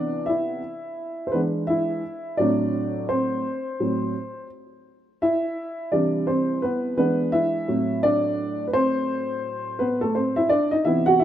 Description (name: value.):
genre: hip hop.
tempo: 85 BPM.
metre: 4/4.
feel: swing 61% on 16ths.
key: A dorian.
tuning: A4 = 441 Hz.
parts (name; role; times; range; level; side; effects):
dark upright piano; solo; 0.0-11.2 s; A2 to F#5; -21 LUFS; equal; none.
room: light reverb, studio reverb.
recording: rough home demo mix.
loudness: -21 LUFS.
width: side -11 dB against mid.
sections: 0.0-11.2 A section.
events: upright piano solo 0.0-11.2.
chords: 0.0 Cmaj9; 1.3 E7; 2.0 Am6; 4.9 Cmaj9; 7.0 E7; 7.7 Am69; 10.5 Cmaj9.